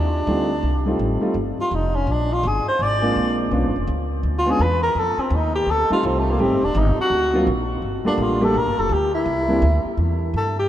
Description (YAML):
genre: jazz, small-group swing and bop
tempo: 167 BPM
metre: 4/4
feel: swing 63% on 8ths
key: F mixolydian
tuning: A4 = 444 Hz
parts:
  - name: breathy tenor saxophone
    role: melody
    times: 0.0-10.7 s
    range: A3 to D5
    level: -22 LUFS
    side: equal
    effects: none
  - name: upright bass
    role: bass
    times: 0.0-10.7 s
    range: Eb1 to G2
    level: -23 LUFS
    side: equal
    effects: none
  - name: warm concert grand piano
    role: accompaniment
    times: 0.3-9.6 s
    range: F#3 to G4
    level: -23 LUFS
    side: equal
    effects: none
room: wet cathedral reverb, RT60 5.5 s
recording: in a vast, echoing space, lossy compression artefacts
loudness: -18 LUFS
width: side -12 dB against mid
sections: 0.0-10.7 A section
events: tenor saxophone solo 0.0-10.7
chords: 0.0 F7; 2.1 Bb7; 3.5 Bdim7; 5.0 F7; 6.4 Am7b5; 7.1 D7alt; 7.8 Gm7; 9.3 C